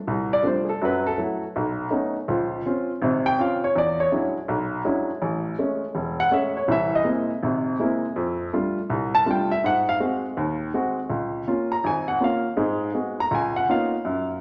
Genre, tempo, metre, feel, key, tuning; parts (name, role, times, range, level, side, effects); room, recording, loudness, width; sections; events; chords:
solo jazz; 163 BPM; 4/4; swing 63% on 8ths; Db major from 11.1 s; A4 = 440 Hz
warm upright piano; solo; 0.1-14.4 s; E1 to Bb5; -24 LUFS; equal
wet large studio reverb, RT60 1.4 s; -24 LUFS; mono
0.0-11.1 A section; 11.1-14.4 A section
upright piano solo 0.0-14.4
0.0 F69; 0.8 Gbm7; 1.5 B9; 2.3 Dbmaj7; 3.8 E13; 5.2 Amaj7; 6.7 Caug7; 8.2 F69; 9.6 Ab7; 11.1 Db6; 12.6 Abm7; 13.3 Db13